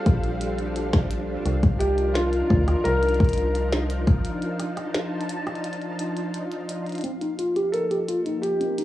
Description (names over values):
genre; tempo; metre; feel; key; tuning
IDM; 86 BPM; 4/4; straight; unclear; A4 = 441 Hz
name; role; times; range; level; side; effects
felt-muted upright piano; melody; 0.0-8.8 s; F4 to F5; -26 LUFS; equal; vintage 12-bit sampler grit, cassette tape, tape echo
soft string machine; sustained chords; 0.0-8.8 s; F3 to A5; -29 LUFS; equal; ensemble chorus, cassette tape
flickering grainy texture; texture; 0.0-7.1 s; F4 to F5; -36 LUFS; left 1 dB; built-in reverb, cassette tape
metallic FM bass; bass; 0.1-4.2 s; Bb1 to D2; -25 LUFS; equal; none
electronic kick drum; drums; 0.1-4.2 s; none; -20 LUFS; equal; cassette tape
glitchy drum kit; drums; 0.1-8.8 s; hi-hat, rim click, snare drum; -32 LUFS; equal; cassette tape
mellow tine electric piano; arpeggios; 7.0-8.8 s; C4 to Bb4; -25 LUFS; left 1 dB; low-pass filter, cassette tape, tape echo
room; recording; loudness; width
light reverb, digital ambience; home recording on cassette, small room ambience; -22 LUFS; side -14 dB against mid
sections
0.0-7.0 A section; 7.0-8.8 B section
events
break 4.2-7.0; filter sweep on string machine 7.0-8.8; filter sweep on tine electric piano 7.0-8.8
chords
0.0 Bb69; 1.5 Cm11; 7.0 F9sus4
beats
0.06 0.76 | 1.46 2.15 2.85 3.55 | 4.25 4.95 5.64 6.34 | 7.04 7.74 8.43